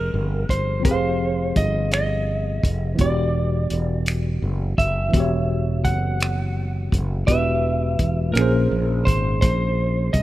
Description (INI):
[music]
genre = slow six-eight R&B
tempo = 56 BPM (dotted quarters)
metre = 6/8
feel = straight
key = unclear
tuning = A4 = 441 Hz
[part]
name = lightly driven lead guitar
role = melody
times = 0.0-10.2 s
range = Bb4 to F#5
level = -26 LUFS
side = right 1 dB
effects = none
[part]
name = mellow tine electric piano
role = accompaniment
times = 0.0-10.2 s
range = Bb2 to F5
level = -26 LUFS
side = equal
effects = overdrive, medium stereo tremolo
[part]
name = fretless electric bass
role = bass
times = 0.0-10.2 s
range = E1 to C2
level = -22 LUFS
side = equal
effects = none
[part]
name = warm soul drum kit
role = drums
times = 0.5-10.2 s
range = finger snaps, hi-hat, kick drum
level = -20 LUFS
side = equal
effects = none
[sound]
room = small room reverb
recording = rough home demo mix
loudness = -19 LUFS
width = side -15 dB against mid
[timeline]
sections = 0.0-10.2 A section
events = none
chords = 0.0 Fm9; 3.0 Em9; 8.4 Bbm9